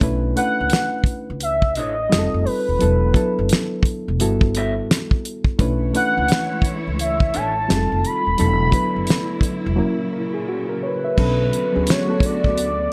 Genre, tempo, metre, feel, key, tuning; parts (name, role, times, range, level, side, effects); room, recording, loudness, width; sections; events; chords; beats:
R&B, neo-soul; 86 BPM; 4/4; swing 60% on 16ths; B minor; A4 = 440 Hz
bright reed electric piano; accompaniment; 0.0-12.9 s; F#3 to E5; -26 LUFS; equal; overdrive, plate reverb
upright bass; bass; 0.0-12.9 s; Eb1 to D2; -25 LUFS; equal
damped 70s drum kit; drums; 0.0-12.8 s; crash cymbal, hi-hat, kick drum, snare drum; -22 LUFS; equal
gliding portamento lead; melody; 0.4-12.9 s; B4 to B5; -24 LUFS; equal; chorus, slapback echo, plate reverb
electric guitar through a small old amp; second line; 1.8-7.5 s; B3 to E5; -30 LUFS; equal; slapback echo
warm studio string section; sustained chords; 5.6-12.9 s; A#2 to C#5; -32 LUFS; equal; plate reverb
light reverb; -20 LUFS; mono
0.0-11.2 A section; 11.2-12.9 B section
break 9.8-11.2
0.0 Bm11; 2.1 F9; 2.8 E9sus4; 4.2 Gmaj13; 5.6 Bm11; 7.7 F9; 8.4 E9sus4; 9.8 F#7; 11.2 Bm9
| 0.01 0.71 1.41 2.11 | 2.81 3.50 4.20 4.90 | 5.60 6.29 6.99 7.69 | 8.39 9.09 9.78 10.48 | 11.18 11.88 12.57